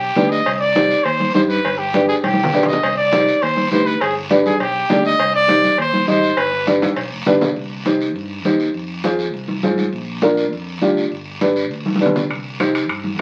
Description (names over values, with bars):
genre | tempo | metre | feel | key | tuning
latin, cumbia | 203 BPM | 4/4 | straight | C harmonic minor, C minor from 7.6 s | A4 = 441 Hz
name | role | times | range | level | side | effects
breathy trumpet | melody | 0.0-6.7 s | G4 to Eb5 | -20 LUFS | equal | none
fingered electric bass | bass | 0.0-13.2 s | F1 to Ab2 | -31 LUFS | equal | none
dark upright piano | accompaniment | 0.2-12.8 s | D4 to Eb5 | -20 LUFS | equal | none
congas | percussion | 0.2-13.2 s | none | -25 LUFS | equal | none
guiro | percussion | 0.2-13.2 s | none | -33 LUFS | equal | none
cowbell and timbales | percussion | 0.5-7.5, 12.3-13.2 s | none | -27 LUFS | equal | none
room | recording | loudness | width
wet club reverb, RT60 0.6 s | very old 78 rpm record, vinyl crackle | -18 LUFS | mono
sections
0.0-7.6 A section; 7.6-13.2 B section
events
drum fill 2.2-2.8, 6.8-7.6, 11.9-12.3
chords
0.5 Cm; 1.6 G; 2.8 Cm; 4.0 G; 5.2 Cm; 6.4 G; 7.6 Cm; 8.7 Fm; 9.9 Bb; 11.1 G; 12.3 Cm